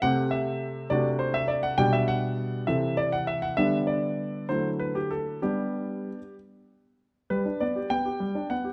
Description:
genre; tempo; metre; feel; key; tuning
classical-period piano sonatina; 63-69 BPM (dotted quarters); 6/8; straight; G major; A4 = 444 Hz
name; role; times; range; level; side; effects
warm concert grand piano; solo; 0.0-8.7 s; B2 to G5; -28 LUFS; equal; none
room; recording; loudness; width
moderate recital hall reverb, RT60 1.7 s; close, detailed microphones; -28 LUFS; mono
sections
0.0-7.3 A section; 7.3-8.7 B section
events
none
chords
0.0 Am7/C; 0.9 D7/C; 1.8 G/B; 2.7 Am/C; 3.6 G/D; 4.5 Dadd9; 5.4 G

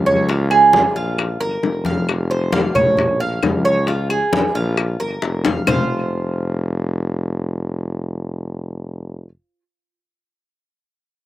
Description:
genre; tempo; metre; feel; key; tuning
latin, Cuban son and guajira; 133 BPM; 4/4; straight; F minor; A4 = 438 Hz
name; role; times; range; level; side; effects
Cuban tres; arpeggios; 0.0-9.3 s; F4 to F5; -18 LUFS; right 2 dB; none
clear tuba; bass; 0.0-9.3 s; F1 to Db2; -22 LUFS; equal; none
bongos; percussion; 0.1-5.8 s; none; -24 LUFS; left 5 dB; slapback echo
congas; percussion; 0.1-5.8 s; none; -22 LUFS; left 2 dB; slapback echo
claves; percussion; 0.5-5.8 s; none; -23 LUFS; left 6 dB; none
room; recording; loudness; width
little or no reverb; recorded outdoors, with no room sound; -16 LUFS; side -14 dB against mid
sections
0.0-5.7 A section; 5.7-9.3 B section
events
drum fill 5.2-5.7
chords
0.3 Db; 1.2 Bb5; 2.1 F5; 3.0 Bbm; 3.9 Db; 4.8 Bb5; 5.7 F5

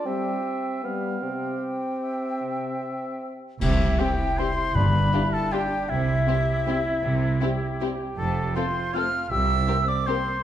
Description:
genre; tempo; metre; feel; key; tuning
classical, orchestral ballroom waltz; 156 BPM; 3/4; uneven beats, rubato; C major; A4 = 440 Hz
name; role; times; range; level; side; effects
clear oboe; second line; 0.0-10.4 s; E4 to F5; -33 LUFS; equal; none
mellow clarinet; second line; 0.0-3.4 s; G4; -41 LUFS; left 2 dB; none
silver concert flute; second line; 0.0-10.4 s; E5 to F6; -29 LUFS; left 2 dB; none
mellow bassoon; accompaniment; 0.0-10.2 s; B3 to G4; -31 LUFS; right 1 dB; none
mellow French horn section; sustained chords; 0.1-10.2 s; C3 to D4; -36 LUFS; left 4 dB; none
dark symphonic double bass section; bass; 3.6-9.6 s; F1 to C2; -28 LUFS; right 2 dB; none
rich symphonic cello section; bass; 3.6-9.6 s; C2 to C3; -28 LUFS; right 2 dB; none
clash cymbals and concert bass drum; percussion; 3.6-4.3 s; none; -31 LUFS; left 1 dB; none
dark chamber violin section; melody; 4.0-10.2 s; G4 to Bb4; -35 LUFS; left 5 dB; none
warm symphonic violin section; second line; 4.0-10.1 s; E4 to G4; -39 LUFS; left 4 dB; none
rich studio viola section; accompaniment; 4.0-10.2 s; C4 to D4; -35 LUFS; equal; none
timpani; percussion; 4.8-5.3 s; G2; -27 LUFS; left 1 dB; none
room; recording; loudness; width
wet recital hall reverb, RT60 1.5 s; dark, warm production; -22 LUFS; side -11 dB against mid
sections
0.0-3.6 A section; 3.6-10.4 B section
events
band accent 3.6-4.0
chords
0.1 C/G; 0.8 G7; 1.2 C; 4.7 G; 5.9 C; 8.2 F; 9.3 C7

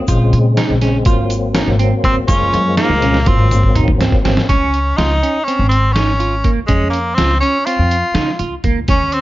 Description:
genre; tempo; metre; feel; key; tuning
progressive instrumental, band music in an uneven meter; 245 BPM (eighths); 9/8; straight; Db major; A4 = 439 Hz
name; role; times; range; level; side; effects
percussive tonewheel organ; accompaniment; 0.0-4.5 s; Db3 to C4; -20 LUFS; left 3 dB; overdrive, chorus vibrato, fast rotary speaker
clean electric guitar; arpeggios; 0.1-9.2 s; Bb3 to F4; -21 LUFS; right 4 dB; analog chorus
upright bass; bass; 0.1-9.2 s; Gb1 to Db3; -16 LUFS; equal; none
trip hop sampler-style drum kit; drums; 0.1-9.2 s; hi-hat, kick drum, snare drum, toms; -17 LUFS; equal; none
tube shaker; percussion; 0.1-4.1 s; none; -34 LUFS; left 9 dB; none
edgy tenor saxophone; melody; 2.0-9.2 s; Ab3 to F4; -17 LUFS; equal; none
room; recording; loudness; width
small room ambience; nothing above 7.5 kHz; -12 LUFS; side -16 dB against mid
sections
0.0-4.5 A section; 4.5-9.2 B section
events
drum fill 3.0-4.5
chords
0.1 Bbm7; 1.1 Ab9; 2.3 Gbmaj9; 3.3 Ab9; 4.5 Dbmaj7

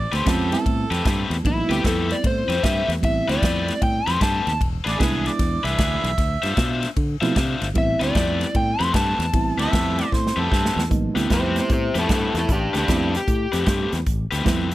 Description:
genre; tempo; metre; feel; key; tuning
electric blues shuffle; 152 BPM; 4/4; swing 65% on 8ths; A minor; A4 = 440 Hz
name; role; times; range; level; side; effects
warm harmonica; second line; 0.0-1.4, 4.9-6.8, 9.6-10.8 s; G#4 to E5; -28 LUFS; right 4 dB; overdrive, plate reverb
fingered electric bass; bass; 0.0-14.7 s; E1 to D3; -25 LUFS; equal; none
cranked stack guitar; riff; 0.1-14.7 s; E3 to E5; -26 LUFS; left 4 dB; overdrive
natural country drum kit; drums; 0.1-14.7 s; hi-hat, kick drum, ride cymbal, snare drum; -24 LUFS; equal; none
reed electric piano; accompaniment; 0.2-14.7 s; F3 to F4; -26 LUFS; right 3 dB; none
overdriven slide guitar; melody; 1.5-4.6, 7.8-13.9 s; D4 to C6; -24 LUFS; left 1 dB; plate reverb
room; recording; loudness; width
light reverb; none; -19 LUFS; side -16 dB against mid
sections
0.0-10.9 A section; 10.9-14.7 B section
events
drum fill 10.1-10.9; electric slide guitar solo 10.9-14.7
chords
0.0 Am9; 4.6 E7; 6.2 Dm9; 7.8 Am9

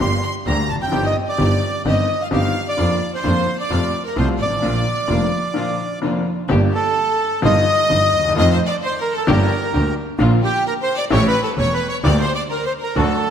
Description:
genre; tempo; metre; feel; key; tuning
tango; 130 BPM; 4/4; rubato; Bb major, G minor from 6.5 s; A4 = 440 Hz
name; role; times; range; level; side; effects
bandoneon; melody; 0.0-13.3 s; G4 to C6; -21 LUFS; right 1 dB; none
bright studio violin section; second line; 0.0-13.3 s; G4 to C6; -25 LUFS; left 2 dB; none
clear upright piano; accompaniment; 0.0-13.2 s; E1 to G4; -22 LUFS; left 3 dB; none
muted studio string section; stabs; 0.0-13.2 s; G3 to G4; -27 LUFS; right 2 dB; none
clear double bass; bass; 0.0-13.2 s; E1 to F2; -20 LUFS; right 1 dB; none
room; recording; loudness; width
moderate scoring stage reverb, RT60 1.7 s; none; -16 LUFS; side -8 dB against mid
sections
0.0-6.5 A section; 6.5-13.3 B section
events
break 5.5-6.5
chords
0.0 Gm; 0.9 Cm/G; 2.8 Bb/F; 3.7 F; 4.6 Bb; 6.5 Gm; 7.4 Ebadd9/G; 8.4 F7; 9.3 Gm; 10.2 Bb; 11.1 A7; 12.0 Gm/D

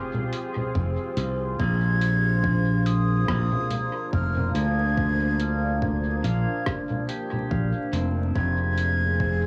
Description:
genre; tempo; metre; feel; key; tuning
ambient dub; 71 BPM; 4/4; swing 56% on 16ths; unclear; A4 = 438 Hz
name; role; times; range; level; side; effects
deep dark ambient pad; sustained chords; 0.0-9.5 s; Bb3 to C5; -34 LUFS; equal; chorus, built-in reverb, plate reverb
pedal steel guitar; arpeggios; 0.0-9.5 s; C4 to G5; -40 LUFS; equal; analog delay, plate reverb
lo-fi sampler-style drum kit; drums; 0.1-9.0 s; congas, hi-hat, rim click; -34 LUFS; equal; overdrive, dub echo
modern bright fingered electric bass; bass; 0.8-9.5 s; F1 to D2; -26 LUFS; equal; none
electronic kick drum; drums; 0.8-9.4 s; none; -34 LUFS; equal; overdrive
breathy mellow silver concert flute; melody; 1.6-9.5 s; Eb6 to Ab6; -33 LUFS; equal; cassette tape, analog delay, plate reverb
backwards swelling texture; texture; 8.7-9.5 s; Ab4; -38 LUFS; equal; built-in reverb
room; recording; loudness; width
light reverb; home recording on cassette, vinyl crackle, small room ambience; -25 LUFS; mono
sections
0.0-9.5 A section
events
none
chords
0.0 Bb7

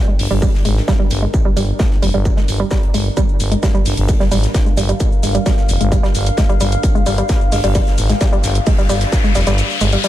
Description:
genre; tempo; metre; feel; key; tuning
driving peak-time techno; 131 BPM; 4/4; straight; G minor; A4 = 440 Hz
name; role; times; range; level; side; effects
deep dark ambient pad; texture; 0.1-10.1 s; D4 to G5; -26 LUFS; left 1 dB; chorus, built-in reverb, sidechain pumping
woody wave-folded pluck; riff; 0.1-10.1 s; G3 to Ab3; -20 LUFS; right 1 dB; chorus, sidechain pumping, digital delay
growling FM bass; bass; 0.2-10.0 s; F1 to Ab1; -17 LUFS; equal; sidechain pumping
electronic hi-hat and shaker; drums; 0.2-10.1 s; none; -26 LUFS; left 1 dB; none
modern studio drum kit; drums; 0.2-10.1 s; hi-hat, shaker, snare drum; -31 LUFS; left 1 dB; sidechain pumping on hats, high-pass filter on hats, high-pass filter on snare, sidechain pumping on perc, high-pass filter on perc, high-pass filter on room
electronic kick drum; drums; 0.4-9.2 s; none; -16 LUFS; equal; distortion
riser; sound effects; 7.8-10.1 s; none; -24 LUFS; left 4 dB; none
room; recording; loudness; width
small room ambience; none; -13 LUFS; side -13 dB against mid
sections
0.0-10.1 A section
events
fade-in on ambient pad 0.0-10.1; filter sweep on synth arpeggio sound 0.0-10.1; riser 7.8-10.1; kick drops out 9.6-10.1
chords
0.0 Gm

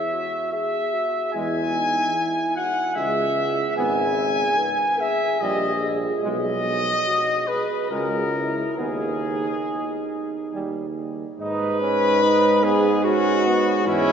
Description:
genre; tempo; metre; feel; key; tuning
classical, brass quintet; 68-76 BPM; 3/4; rubato; G# minor; A4 = 439 Hz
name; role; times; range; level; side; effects
mellow trumpet; melody; 0.0-14.1 s; E4 to G#5; -24 LUFS; left 4 dB; none
warm flugelhorn; second line; 0.0-14.1 s; E4 to G#5; -26 LUFS; right 3 dB; none
mellow French horn; accompaniment; 0.0-14.1 s; G#3 to B4; -28 LUFS; right 2 dB; none
clear trombone; accompaniment; 1.3-14.1 s; G3 to D#4; -30 LUFS; right 3 dB; none
clear tuba; bass; 1.3-14.1 s; G#1 to G#2; -27 LUFS; right 2 dB; none
room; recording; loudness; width
wet cathedral reverb, RT60 5.3 s; heard from further back in the room, nothing above 7.7 kHz; -20 LUFS; side -7 dB against mid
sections
0.0-11.4 A section; 11.4-14.1 B section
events
none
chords
0.0 C#m (rootless); 3.0 C#m; 3.8 G#m; 5.4 D#/A#; 6.2 G#m/B; 7.9 C#m; 8.8 G#m/D#; 10.5 D#; 11.4 G#m

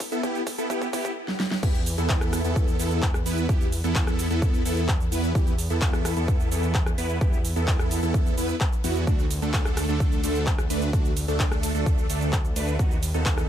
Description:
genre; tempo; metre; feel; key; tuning
EDM, festival progressive house; 129 BPM; 4/4; straight; E minor; A4 = 441 Hz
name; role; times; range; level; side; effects
big-room dance drum kit; drums; 0.0-13.5 s; crash cymbal, handclaps, hi-hat, ride cymbal, rim click, shaker, snare drum; -31 LUFS; equal; none
electronic kick drum; drums; 0.0-13.4 s; none; -24 LUFS; equal; high-pass filter on kick, high-pass filter on room
supersaw chords; riff; 0.1-13.5 s; A3 to B4; -28 LUFS; right 1 dB; phaser, sidechain pumping, ping-pong delay
detuned saw bass; bass; 1.6-13.5 s; D2 to E2; -28 LUFS; equal; sidechain pumping
room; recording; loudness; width
little or no reverb; none; -22 LUFS; side -10 dB against mid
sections
0.0-1.6 A section; 1.6-13.5 B section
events
build-up 0.0-1.6; drum fill 0.0-1.2, 1.3-1.6; drop 1.6-13.5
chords
0.0 Em; 1.6 E5; 9.1 D5; 12.8 B/D#

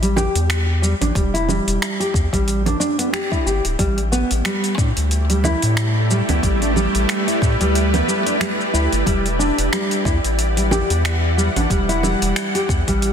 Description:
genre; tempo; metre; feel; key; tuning
organic downtempo; 91 BPM; 4/4; swing 57% on 16ths; unclear; A4 = 440 Hz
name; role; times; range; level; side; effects
nylon-string guitar; arpeggios; 0.0-13.1 s; G3 to G4; -21 LUFS; equal; ping-pong delay, shimmer reverb
round analog bass; bass; 0.0-13.1 s; D1 to A2; -20 LUFS; equal; none
deep house drum kit; drums; 0.0-13.1 s; congas, finger snaps, hi-hat, shaker; -24 LUFS; right 2 dB; soft clipping on snare
electronic kick drum; drums; 1.2-13.0 s; none; -21 LUFS; equal; none
bowed-like drone; sustained chords; 5.1-13.1 s; E3 to F#5; -22 LUFS; equal; built-in reverb, sidechain pumping, shimmer reverb
room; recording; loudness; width
moderate scoring stage reverb, RT60 2.0 s; dense, heavily limited modern master; -16 LUFS; side -8 dB against mid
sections
0.0-13.1 A section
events
none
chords
0.0 Em7; 3.8 A9sus4; 9.1 Em7

